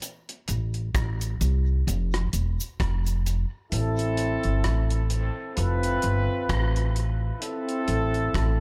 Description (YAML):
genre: dub reggae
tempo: 65 BPM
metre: 4/4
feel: swing 57% on 16ths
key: A minor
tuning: A4 = 440 Hz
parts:
  - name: cloth-damped thuddy drum kit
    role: drums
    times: 0.0-8.6 s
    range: hi-hat, kick drum, rim click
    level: -34 LUFS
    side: equal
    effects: none
  - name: cabasa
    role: percussion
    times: 0.0-3.5 s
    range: none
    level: -41 LUFS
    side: equal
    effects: dub echo
  - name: upright bass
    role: bass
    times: 0.5-8.6 s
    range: E1 to C2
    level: -27 LUFS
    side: equal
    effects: none
  - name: warm horn section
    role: second line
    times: 3.7-8.6 s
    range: C4 to B4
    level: -30 LUFS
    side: equal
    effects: dub echo
room: light reverb, small room ambience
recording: echo-heavy mix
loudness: -26 LUFS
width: mono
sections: 0.0-8.6 A section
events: break 0.0-3.7; kick muted 3.7-5.6; part muted 3.7-8.6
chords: 0.0 Am; 1.9 N.C.; 3.7 Am; 5.6 F; 7.4 Am